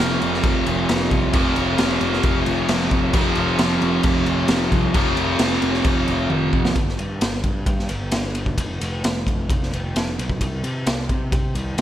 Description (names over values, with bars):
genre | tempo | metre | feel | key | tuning
hard rock | 132 BPM | 4/4 | straight | unclear | A4 = 439 Hz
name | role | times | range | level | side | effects
biting overdriven guitar | riff | 0.0-6.8 s | F2 to F3 | -20 LUFS | equal | slapback echo
fuzz picked electric bass | bass | 0.0-11.8 s | F1 to C3 | -26 LUFS | equal | overdrive
raw garage drum kit | drums | 0.0-11.8 s | crash cymbal, kick drum, ride cymbal, snare drum, toms | -21 LUFS | equal | none
room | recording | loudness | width
moderate lush hall reverb, RT60 1.8 s, small room ambience | big arena sound | -18 LUFS | side -11 dB against mid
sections
0.0-6.8 A section; 6.8-11.8 B section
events
drum fill 6.3-6.8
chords
0.0 F5; 6.8 N.C.